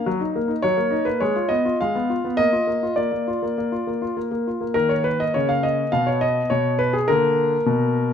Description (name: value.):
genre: classical-period piano sonatina.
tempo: 102 BPM.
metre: 4/4.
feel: rubato.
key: unclear.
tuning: A4 = 441 Hz.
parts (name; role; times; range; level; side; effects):
clear grand piano; solo; 0.0-8.1 s; Cb3 to F5; -19 LUFS; left 1 dB; none.
room: moderate recital hall reverb, RT60 1.7 s.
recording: close, detailed microphones.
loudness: -19 LUFS.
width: side -8 dB against mid.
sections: 0.0-4.8 A section; 4.8-8.1 B section.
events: none.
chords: 0.1 Ebm/Gb; 1.2 Fdim/Ab; 2.4 Bb; 4.8 Eb5; 5.9 N.C.; 7.1 Bb.